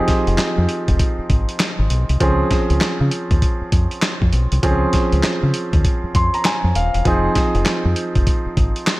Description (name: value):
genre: R&B, new jack swing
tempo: 99 BPM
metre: 4/4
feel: swing 63% on 16ths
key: F minor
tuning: A4 = 441 Hz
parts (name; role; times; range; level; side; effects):
- clear concert grand piano; accompaniment; 0.0-9.0 s; F3 to C6; -20 LUFS; right 1 dB; none
- dusty soul sampler-style drum kit; drums; 0.1-9.0 s; handclaps, hi-hat, kick drum, snare drum; -19 LUFS; equal; gated reverb
- deep dub fingered electric bass; bass; 0.3-8.7 s; Eb1 to Db3; -18 LUFS; equal; none
room: light reverb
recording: none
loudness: -15 LUFS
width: side -19 dB against mid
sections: 0.0-9.0 A section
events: grand piano fill 5.8-7.1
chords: 0.0 Fm7; 2.2 Dbmaj7; 7.1 Fm7